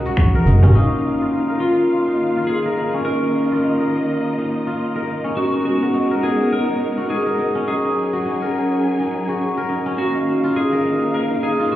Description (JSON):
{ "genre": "organic downtempo", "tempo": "104 BPM", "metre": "4/4", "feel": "swing 59% on 16ths", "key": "Eb minor", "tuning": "A4 = 440 Hz", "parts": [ { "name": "clean lap steel guitar", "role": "melody", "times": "0.0-11.8 s", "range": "Eb4 to Bb4", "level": "-22 LUFS", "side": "equal", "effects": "ping-pong delay, shimmer reverb" }, { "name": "clear studio string section", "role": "sustained chords", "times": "0.0-11.8 s", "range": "Eb3 to Ab5", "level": "-24 LUFS", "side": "equal", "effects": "sidechain pumping, low-pass filter, shimmer reverb" }, { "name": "steel-string zither", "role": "arpeggios", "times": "0.0-11.8 s", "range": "Db4 to Bb4", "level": "-21 LUFS", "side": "left 1 dB", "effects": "low-pass filter, ping-pong delay, shimmer reverb" }, { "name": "afro-pop drum kit", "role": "drums", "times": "0.1-0.7 s", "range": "cabasa, finger snaps, toms", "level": "-16 LUFS", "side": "equal", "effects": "studio reverb" }, { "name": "fretless electric bass", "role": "bass", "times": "0.5-0.7 s", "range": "Gb1", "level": "-13 LUFS", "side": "equal", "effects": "none" }, { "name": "frame drum", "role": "percussion", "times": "0.6-0.7 s", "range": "none", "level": "-22 LUFS", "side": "right 2 dB", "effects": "none" } ], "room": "moderate huge ambient reverb, RT60 4.3 s", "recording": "heard muffled through a wall, club reverb, EQ", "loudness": "-16 LUFS", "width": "side -13 dB against mid", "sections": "0.8-11.8 A section", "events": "drum fill 0.2-0.8; filter sweep on guzheng 0.8-11.8", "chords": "0.0 Gbsus2; 0.8 Ebsus2; 5.4 Abm7; 7.7 Gbsus2; 10.0 Ebsus2" }